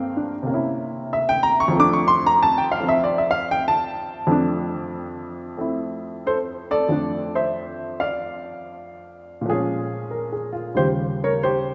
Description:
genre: solo jazz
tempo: 93 BPM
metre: 4/4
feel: swing 69% on 8ths, rubato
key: F major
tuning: A4 = 440 Hz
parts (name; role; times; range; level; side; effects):
- clear upright piano; solo; 0.0-11.7 s; Eb2 to D6; -22 LUFS; equal; none
room: wet church reverb, RT60 3.2 s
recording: recorded in a church or concert hall, nothing above 7.8 kHz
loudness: -22 LUFS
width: mono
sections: 0.0-6.9 A section; 6.9-11.7 B section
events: upright piano solo 0.0-6.9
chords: 0.5 C7b9; 1.7 F6; 9.5 Bbm7; 10.8 Eb9

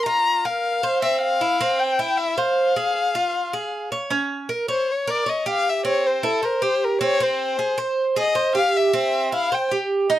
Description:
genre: latin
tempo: 155 BPM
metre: 4/4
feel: straight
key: F harmonic minor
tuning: A4 = 443 Hz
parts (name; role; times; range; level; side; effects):
- warm violin; melody; 0.0-9.7 s; A4 to Bb5; -22 LUFS; left 3 dB; none
- Cuban tres; arpeggios; 0.0-10.2 s; C4 to Db5; -22 LUFS; right 3 dB; none
room: light reverb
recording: dry, close 1970s-style studio recording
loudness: -19 LUFS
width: side -13 dB against mid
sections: 0.0-4.1 A section; 4.1-10.2 B section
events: violin solo 4.1-10.2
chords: 0.0 Bbsus2; 1.0 C; 2.6 Fm; 4.1 Db5; 5.7 C; 7.2 Cm; 8.7 C

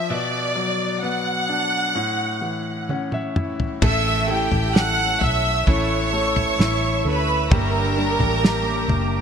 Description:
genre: pop ballad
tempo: 65 BPM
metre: 4/4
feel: straight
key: unclear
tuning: A4 = 440 Hz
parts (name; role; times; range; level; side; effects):
- warm studio violin section; melody; 0.0-9.2 s; G4 to F#6; -22 LUFS; right 1 dB; none
- bright concert grand piano; accompaniment; 0.0-9.2 s; A2 to F#5; -27 LUFS; left 3 dB; none
- damped 70s drum kit; drums; 2.9-9.1 s; crash cymbal, kick drum, snare drum, toms; -21 LUFS; equal; none
- shimmering ambient pad; sustained chords; 4.6-9.2 s; Bb3 to E6; -29 LUFS; equal; chorus, built-in reverb
- nylon-string guitar; arpeggios; 3.8-9.2 s; G2 to A4; -30 LUFS; right 4 dB; wide subtle chorus, ping-pong delay
- vintage muted fingered electric bass; bass; 3.8-9.2 s; F#1 to D2; -24 LUFS; right 1 dB; none
room: moderate lush hall reverb, RT60 2.4 s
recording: bright 1980s-style digital production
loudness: -18 LUFS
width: side -7 dB against mid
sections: 0.0-3.8 A section; 3.8-9.2 B section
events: grand piano fill 2.4-3.8; drum fill 2.9-3.8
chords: 0.1 Bm; 2.0 A; 7.5 Gmadd9

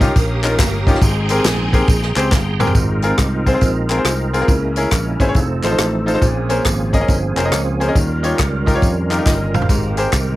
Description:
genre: uptempo gospel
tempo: 138 BPM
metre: 4/4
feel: swing 65% on 8ths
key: Ab major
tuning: A4 = 440 Hz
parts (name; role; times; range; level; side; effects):
- clear studio string section; melody; 0.0-2.3 s; C4 to Bb4; -25 LUFS; right 1 dB; cassette tape, analog delay
- bright concert grand piano; accompaniment; 0.0-10.4 s; Ab2 to F5; -20 LUFS; left 2 dB; cassette tape
- bright tonewheel organ; sustained chords; 0.0-10.4 s; Eb3 to Eb6; -24 LUFS; right 3 dB; fast rotary speaker, chorus vibrato, cassette tape
- fingered electric bass; bass; 0.0-10.4 s; F1 to F2; -20 LUFS; equal; none
- natural country drum kit; drums; 0.0-10.3 s; hi-hat, kick drum, rim click, snare drum, toms; -17 LUFS; equal; none
- tambourine and handclaps; percussion; 0.0-10.3 s; none; -27 LUFS; left 1 dB; none
- mellow French horn section; sustained chords; 2.8-10.4 s; Db3 to C5; -33 LUFS; right 1 dB; none
room: little or no reverb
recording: home recording on cassette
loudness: -14 LUFS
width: side -16 dB against mid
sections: 0.0-2.8 A section; 2.8-10.4 B section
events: drum fill 2.3-2.8, 9.3-9.7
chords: 0.0 Eb9; 1.0 Abmaj9; 2.8 Ab69; 4.5 Dbm6; 5.4 F7; 6.2 Bbm9; 8.0 Eb9; 9.7 Abmaj9

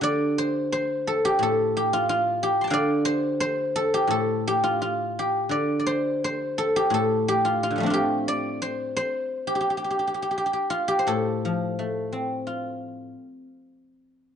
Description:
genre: chinese traditional, Chinese solo plucked strings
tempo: 81-92 BPM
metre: 2/4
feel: rubato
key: G shang mode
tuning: A4 = 440 Hz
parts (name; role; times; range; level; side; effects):
- guzheng; solo; 0.0-14.4 s; A2 to C6; -22 LUFS; equal; none
room: moderate spring reverb, RT60 1.5 s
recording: dark, warm production, nothing above 10.3 kHz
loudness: -22 LUFS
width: side -8 dB against mid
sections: 0.0-11.1 A section; 11.1-14.4 B section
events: none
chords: none

